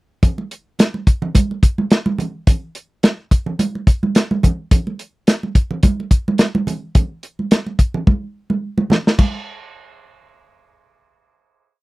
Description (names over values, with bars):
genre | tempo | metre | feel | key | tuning
funk | 107 BPM | 4/4 | swing 56% on 16ths | none | none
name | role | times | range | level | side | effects
warm soul drum kit | drums | 0.2-9.3 s | crash cymbal, hi-hat, kick drum, snare drum | -12 LUFS | equal | none
congas | percussion | 0.2-9.4 s | none | -21 LUFS | right 3 dB | none
room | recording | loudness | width
light reverb | dry, close 1970s-style studio recording | -15 LUFS | side -21 dB against mid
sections
0.2-9.2 breakdown; 9.2-11.4 final hit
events
drum fill 8.1-9.2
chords
none